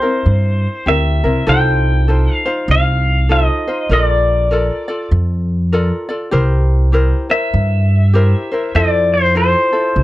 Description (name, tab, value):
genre	Hawaiian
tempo	99 BPM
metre	4/4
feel	swing 62% on 8ths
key	F major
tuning	A4 = 441 Hz
part	pedal steel guitar	melody	0.0-10.0 s	C5 to G5	-17 LUFS	left 1 dB	none
part	ukulele	accompaniment	0.0-10.0 s	C4 to D5	-20 LUFS	left 1 dB	none
part	upright bass	bass	0.3-10.0 s	Bb1 to G2	-14 LUFS	equal	none
room	little or no reverb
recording	dry, close 1970s-style studio recording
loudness	-12 LUFS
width	side -16 dB against mid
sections	0.0-10.0 A section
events	none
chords	0.0 C7; 1.5 F7/C; 3.9 Bbmaj7; 6.3 C7; 8.7 Fmaj7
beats	0.26 0.87 | 1.47 2.08 2.69 3.29 | 3.90 4.51 5.11 5.72 | 6.33 6.93 7.54 8.14 | 8.75 9.35 9.96